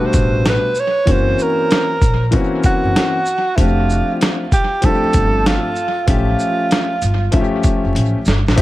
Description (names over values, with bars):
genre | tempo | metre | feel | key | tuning
hip hop, jazz-hop | 96 BPM | 4/4 | swing 65% on 16ths | unclear | A4 = 440 Hz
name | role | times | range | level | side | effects
clear alto saxophone | melody | 0.0-7.9 s | E4 to C#5 | -19 LUFS | right 2 dB | tape echo
warm concert grand piano | accompaniment | 0.0-8.6 s | B2 to E5 | -19 LUFS | left 2 dB | none
upright bass | bass | 0.0-8.6 s | F1 to D2 | -18 LUFS | equal | none
dusty soul sampler-style drum kit | drums | 0.1-8.6 s | hi-hat, kick drum, shaker, snare drum | -17 LUFS | equal | overdrive, tape echo
room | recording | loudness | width
light reverb, small room ambience | echo-heavy mix, vinyl crackle | -13 LUFS | side -16 dB against mid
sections
0.0-8.6 A section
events
drum fill 8.0-8.6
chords
0.0 Gmaj9; 1.1 F#7#11; 3.6 F6; 6.1 A7b13